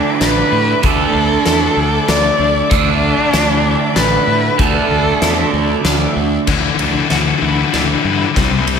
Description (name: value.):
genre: post-rock.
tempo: 96 BPM.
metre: 3/4.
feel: straight.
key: unclear.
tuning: A4 = 439 Hz.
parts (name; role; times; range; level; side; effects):
rich cello; melody; 0.0-5.8 s; D4 to D5; -17 LUFS; left 2 dB; slapback echo, analog delay.
clear studio string section; sustained chords; 0.0-8.8 s; C4 to D6; -24 LUFS; left 2 dB; none.
twelve-string electric guitar; arpeggios; 0.0-8.8 s; C3 to F#4; -23 LUFS; left 4 dB; tremolo, analog delay.
crunchy overdriven guitar; riff; 0.0-6.5 s; D3 to D4; -18 LUFS; right 9 dB; phaser, slapback echo.
fuzz fingered electric bass; bass; 0.2-8.8 s; A1 to A2; -20 LUFS; left 1 dB; overdrive.
huge arena drum kit; drums; 0.2-8.8 s; crash cymbal, hi-hat, kick drum, ride cymbal, snare drum; -20 LUFS; left 1 dB; none.
thick fuzz guitar; riff; 6.5-8.8 s; C3 to G3; -16 LUFS; left 10 dB; distortion, slapback echo.
room: moderate lush hall reverb, RT60 1.7 s.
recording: big arena sound.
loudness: -12 LUFS.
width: side -6 dB against mid.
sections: 0.0-6.5 A section; 6.5-8.8 B section.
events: build-up 6.5-8.8; drum fill 6.5-8.8.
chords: 0.0 Dsus2; 6.5 Dadd9.